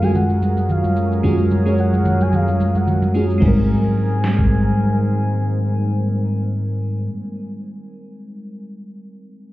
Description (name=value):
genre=amapiano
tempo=110 BPM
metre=4/4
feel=swing 55% on 16ths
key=Ab major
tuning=A4 = 439 Hz
part: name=soft octave-layered synth lead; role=melody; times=0.0-7.1 s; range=F5 to Ab5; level=-28 LUFS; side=equal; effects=chorus, tape echo
part: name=bell-like FM electric piano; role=accompaniment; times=0.0-9.5 s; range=G3 to Db5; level=-22 LUFS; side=equal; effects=chorus
part: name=deep dark ambient pad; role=sustained chords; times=0.0-7.1 s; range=Gb3 to C5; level=-26 LUFS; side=right 1 dB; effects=chorus, built-in reverb
part: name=mellow tine electric piano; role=bass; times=0.0-7.1 s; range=Gb2 to Ab2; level=-19 LUFS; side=equal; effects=ensemble chorus
part: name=smooth R&B drum kit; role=drums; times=0.0-4.5 s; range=crash cymbal, kick drum, shaker, snare drum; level=-19 LUFS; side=equal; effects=none
part: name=congas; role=percussion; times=0.0-3.7 s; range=none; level=-24 LUFS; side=left 1 dB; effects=none
room=light reverb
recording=heard muffled through a wall, club reverb, EQ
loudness=-16 LUFS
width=side -16 dB against mid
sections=0.0-3.4 A section; 3.4-7.8 B section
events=none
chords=0.0 Gbmaj9; 3.4 Abmaj9